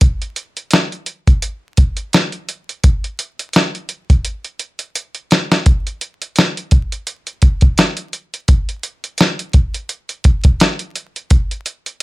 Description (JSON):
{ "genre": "hip hop", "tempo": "85 BPM", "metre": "4/4", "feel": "swing 56% on 16ths", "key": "none", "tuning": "none", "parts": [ { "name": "dusty soul sampler-style drum kit", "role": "drums", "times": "0.0-12.0 s", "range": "hi-hat, kick drum, snare drum", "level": "-12 LUFS", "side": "equal", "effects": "none" } ], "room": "light reverb", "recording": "vinyl crackle", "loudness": "-14 LUFS", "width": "side -20 dB against mid", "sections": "0.0-5.7 A section; 5.7-12.0 B section", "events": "drum fill 4.3-5.7", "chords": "none" }